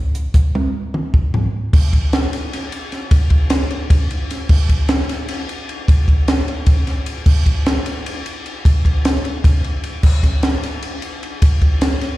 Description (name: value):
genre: rock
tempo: 303 BPM (eighths)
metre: 7/8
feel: straight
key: none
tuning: none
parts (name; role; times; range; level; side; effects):
- compact cocktail drum kit; drums; 0.1-12.1 s; crash cymbal, hi-hat, kick drum, ride cymbal, snare drum, toms; -15 LUFS; equal; none
room: light reverb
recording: live gig heard through the venue's PA, recital hall reverb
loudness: -14 LUFS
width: side -17 dB against mid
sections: 0.0-1.7 A section; 1.7-12.2 B section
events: drum fill 0.5-1.7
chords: none